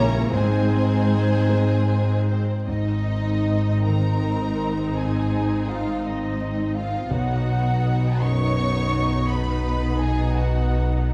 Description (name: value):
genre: cinematic, emotional film score for orchestra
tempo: 49-58 BPM (dotted quarters)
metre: 6/8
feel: rubato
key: unclear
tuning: A4 = 440 Hz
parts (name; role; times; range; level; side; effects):
- warm symphonic violin section; melody; 0.0-11.1 s; C5 to Db6; -37 LUFS; equal; none
- rich symphonic violin section; second line; 0.0-11.0 s; C4 to Db5; -36 LUFS; equal; none
- clear symphonic viola section; accompaniment; 0.0-11.1 s; G3 to Eb4; -33 LUFS; equal; none
- warm concert grand piano; accompaniment; 0.0-11.1 s; B1 to Db5; -27 LUFS; equal; none
- warm French horn section; sustained chords; 0.0-11.1 s; B3 to Fb4; -31 LUFS; equal; none
- rich studio double bass section; bass; 0.0-11.1 s; Ab1 to B1; -28 LUFS; equal; none
- rich symphonic cello section; bass; 0.0-11.1 s; Ab2 to Bb3; -30 LUFS; equal; none
- small flute group; second line; 0.3-11.0 s; C5 to Db6; -35 LUFS; equal; none
room: wet recital hall reverb, RT60 1.4 s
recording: vinyl crackle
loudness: -22 LUFS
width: mono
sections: 0.0-2.7 A section; 2.7-11.1 B section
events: none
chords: 0.3 Ab; 7.1 B